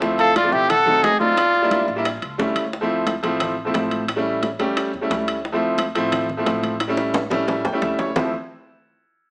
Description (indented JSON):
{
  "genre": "Afro-Cuban jazz",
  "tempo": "177 BPM",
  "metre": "4/4",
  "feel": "straight",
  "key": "D minor",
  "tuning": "A4 = 440 Hz",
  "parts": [
    { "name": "clear upright piano", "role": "accompaniment", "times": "0.0-8.3 s", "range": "F3 to G5", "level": "-21 LUFS", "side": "equal", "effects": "none" },
    { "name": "upright bass", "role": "bass", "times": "0.0-8.3 s", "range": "A1 to A2", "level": "-36 LUFS", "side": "equal", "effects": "none" },
    { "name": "bongos", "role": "percussion", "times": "0.0-8.2 s", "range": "none", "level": "-29 LUFS", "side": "left 1 dB", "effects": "none" },
    { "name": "congas", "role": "percussion", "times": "0.0-8.2 s", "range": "none", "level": "-31 LUFS", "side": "equal", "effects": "none" },
    { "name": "warm trumpet", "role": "melody", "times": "0.2-2.0 s", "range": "F4 to A4", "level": "-18 LUFS", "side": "equal", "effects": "tape echo" },
    { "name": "reedy silver concert flute", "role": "second line", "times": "0.2-2.0 s", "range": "D5 to F#5", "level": "-24 LUFS", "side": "equal", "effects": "none" },
    { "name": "timbales", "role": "percussion", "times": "0.2-8.2 s", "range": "none", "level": "-27 LUFS", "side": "equal", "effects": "none" }
  ],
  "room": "moderate large studio reverb, RT60 0.9 s",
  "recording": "small speaker sound",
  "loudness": "-18 LUFS",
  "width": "side -33 dB against mid",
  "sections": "0.0-2.7 A section; 2.7-8.2 B section; 8.2-9.3 C section",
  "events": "drum fill 6.8-8.2; upright piano fill 7.5-8.2",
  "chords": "0.0 Dm9; 0.7 B7b9; 1.4 Em7b5; 2.1 A7; 2.7 Dm7; 4.1 A7; 5.4 Dm7; 6.8 A7; 8.2 Dm7",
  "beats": "| 0.02 0.35 0.69 1.03 | 1.37 1.71 2.05 2.39 | 2.73 3.07 3.41 3.75 | 4.09 4.43 4.77 5.11 | 5.45 5.78 6.12 6.46 | 6.80 7.14 7.48 7.82 | 8.16"
}